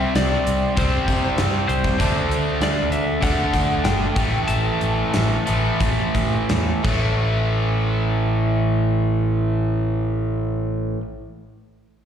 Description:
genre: hard rock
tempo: 83-98 BPM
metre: 4/4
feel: straight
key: A minor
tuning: A4 = 439 Hz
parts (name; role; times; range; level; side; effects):
- lightly driven lead guitar; melody; 0.0-6.5 s; C5 to A5; -26 LUFS; left 2 dB; slapback echo, tape echo
- cranked stack guitar; riff; 0.0-11.0 s; A2 to D4; -22 LUFS; equal; overdrive, spring reverb, slapback echo
- picked electric bass; bass; 0.0-11.0 s; G1 to C3; -22 LUFS; equal; none
- gated 80s drum kit; drums; 0.2-7.0 s; crash cymbal, hi-hat, kick drum, snare drum; -25 LUFS; equal; none
room: little or no reverb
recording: live gig heard through the venue's PA, recital hall reverb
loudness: -18 LUFS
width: side -8 dB against mid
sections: 0.0-7.2 A section; 7.2-10.1 B section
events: slowing down 2.0-7.2; drum fill 6.8-7.2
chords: 0.0 C5; 2.0 D; 4.2 A5

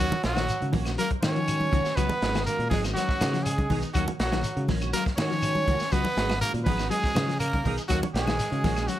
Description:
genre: afrobeat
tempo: 121 BPM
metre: 4/4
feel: straight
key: Eb minor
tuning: A4 = 440 Hz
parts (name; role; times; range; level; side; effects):
- clear trumpet; melody; 0.0-9.0 s; Gb4 to Db5; -29 LUFS; equal; plate reverb
- growling tenor saxophone; second line; 0.0-9.0 s; Gb3 to Db4; -34 LUFS; right 4 dB; plate reverb
- clean electric guitar; arpeggios; 0.0-9.0 s; Eb3 to Gb3; -34 LUFS; left 7 dB; lush chorus
- semi-hollow electric guitar; stabs; 0.0-8.9 s; Gb3 to Ab4; -37 LUFS; right 4 dB; ensemble chorus, plate reverb
- fingered electric bass; bass; 0.0-8.9 s; Ab1 to Eb3; -30 LUFS; equal; none
- crunchy breakbeat drum kit; drums; 0.1-9.0 s; hi-hat, kick drum, snare drum; -30 LUFS; equal; none
- congas; percussion; 0.1-8.8 s; none; -32 LUFS; right 2 dB; none
- claves; percussion; 0.4-8.9 s; none; -43 LUFS; left 7 dB; none
- shekere; percussion; 0.4-9.0 s; none; -37 LUFS; left 1 dB; none
- bell-like tine electric piano; accompaniment; 0.6-9.0 s; Eb3 to Gb4; -38 LUFS; right 1 dB; medium stereo tremolo
room: light reverb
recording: none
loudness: -23 LUFS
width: side -13 dB against mid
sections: 0.0-9.0 A section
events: none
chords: 0.0 Ebm7; 2.0 Db9sus4; 4.0 Ebm7; 5.9 Db9sus4; 7.9 Ebm7

